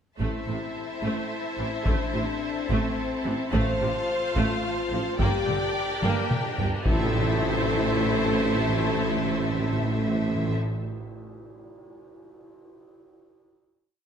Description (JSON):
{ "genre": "cinematic, epic orchestral film score", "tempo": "72 BPM (dotted quarters)", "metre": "6/8", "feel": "straight", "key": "A phrygian", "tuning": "A4 = 439 Hz", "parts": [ { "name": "rich symphonic violin section", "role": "melody", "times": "0.2-10.5 s", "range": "E5 to G5", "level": "-35 LUFS", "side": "left 3 dB", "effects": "none" }, { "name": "rich studio violin section", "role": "second line", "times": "0.2-10.6 s", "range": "C5 to D5", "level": "-35 LUFS", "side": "equal", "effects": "none" }, { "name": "clear symphonic viola section", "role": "accompaniment", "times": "0.2-10.6 s", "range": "C3 to Bb3", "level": "-33 LUFS", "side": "right 2 dB", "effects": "none" }, { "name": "mellow French horn section", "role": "sustained chords", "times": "0.2-10.6 s", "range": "C4 to C5", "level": "-32 LUFS", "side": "left 4 dB", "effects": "none" }, { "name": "rich symphonic string section", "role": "sustained chords", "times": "0.2-10.6 s", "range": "C4 to A5", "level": "-33 LUFS", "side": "left 1 dB", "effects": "none" }, { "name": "mellow tuba", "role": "bass", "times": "0.2-10.6 s", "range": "G1 to A1", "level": "-32 LUFS", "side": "right 3 dB", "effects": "none" }, { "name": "rich symphonic cello section", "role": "bass", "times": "0.2-10.6 s", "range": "G2 to A2", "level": "-33 LUFS", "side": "right 2 dB", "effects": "none" }, { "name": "rich symphonic double bass section", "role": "bass", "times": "0.2-10.6 s", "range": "G1 to A1", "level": "-33 LUFS", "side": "right 4 dB", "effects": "none" }, { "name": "taiko ensemble", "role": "drums", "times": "0.2-7.9 s", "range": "none", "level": "-29 LUFS", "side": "equal", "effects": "none" }, { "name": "cymbal swell and tam-tam", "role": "percussion", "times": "3.5-9.0 s", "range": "none", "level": "-36 LUFS", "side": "left 2 dB", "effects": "none" }, { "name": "timpani", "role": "percussion", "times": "3.5-4.3, 6.9-10.6 s", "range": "A2", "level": "-32 LUFS", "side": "left 1 dB", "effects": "none" } ], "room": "moderate scoring stage reverb, RT60 1.7 s", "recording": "none", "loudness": "-23 LUFS", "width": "side -8 dB against mid", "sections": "0.2-6.9 theme; 6.9-10.2 final chord", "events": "drum fill 6.0-6.9; band accent 6.9-7.4", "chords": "0.2 Am; 3.5 F/A; 5.2 Gm; 6.9 Am" }